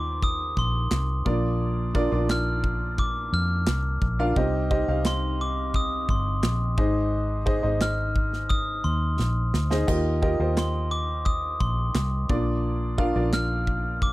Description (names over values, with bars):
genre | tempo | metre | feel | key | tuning
piano-driven pop | 87 BPM | 4/4 | straight | Eb major | A4 = 440 Hz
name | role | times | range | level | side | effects
glockenspiel with brass mallets | melody | 0.0-14.1 s | C6 to F6 | -30 LUFS | equal | none
clear upright piano | accompaniment | 0.0-14.1 s | Ab2 to F5 | -28 LUFS | equal | none
vintage muted fingered electric bass | bass | 0.0-14.1 s | G1 to F2 | -26 LUFS | equal | none
modern studio drum kit | drums | 0.2-14.1 s | handclaps, kick drum, snare drum, splash cymbal | -26 LUFS | equal | none
room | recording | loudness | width
little or no reverb | dry, close 1970s-style studio recording | -22 LUFS | side -18 dB against mid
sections
0.0-14.1 A section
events
drum fill 9.2-9.9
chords
0.0 Ebadd9; 1.3 Bb; 4.4 Cm; 6.8 Ab; 9.9 Ebadd9; 12.3 Bb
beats
0.23 0.92 | 1.61 2.29 2.98 3.67 | 4.36 5.05 5.74 6.43 | 7.12 7.81 8.50 9.19 | 9.88 10.57 11.26 11.95 | 12.64 13.33 14.02